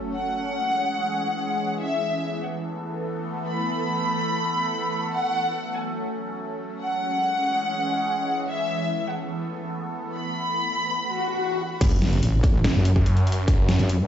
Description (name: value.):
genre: heavy wobble dubstep.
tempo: 144 BPM.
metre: 4/4.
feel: half-time.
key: F# minor.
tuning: A4 = 443 Hz.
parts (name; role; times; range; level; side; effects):
evolving wavetable pad; sustained chords; 0.0-11.0 s; E3 to A4; -29 LUFS; right 1 dB; phaser, built-in reverb, sidechain pumping.
impact and swell; sound effects; 0.0-0.1, 11.1-13.5 s; none; -30 LUFS; left 1 dB; none.
warm symphonic violin section; melody; 0.1-11.7 s; E5 to B5; -26 LUFS; left 1 dB; tape echo.
wobble bass; bass; 11.8-14.1 s; F#1 to F#2; -21 LUFS; equal; chorus, overdrive.
dubstep drum kit; drums; 11.8-14.0 s; crash cymbal, hi-hat, snare drum; -27 LUFS; equal; overdrive.
electronic kick drum; drums; 11.8-13.6 s; none; -21 LUFS; equal; overdrive.
snarling distorted saw bass; bass; 12.6-13.8 s; F#1 to F#2; -21 LUFS; equal; distortion, overdrive.
room: moderate digital room reverb, RT60 1.3 s, digital ambience.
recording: played on a big sound system in a bare room, stone room reverb, nothing above 7.8 kHz.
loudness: -22 LUFS.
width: side -10 dB against mid.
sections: 0.0-11.8 A section; 11.8-14.1 B section.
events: swell 11.1-11.8; drop 11.8-14.1; impact 11.8-13.5.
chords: 0.1 C#m; 1.8 Esus4; 5.1 F#m; 6.8 C#m; 8.5 Esus4; 11.8 F#m.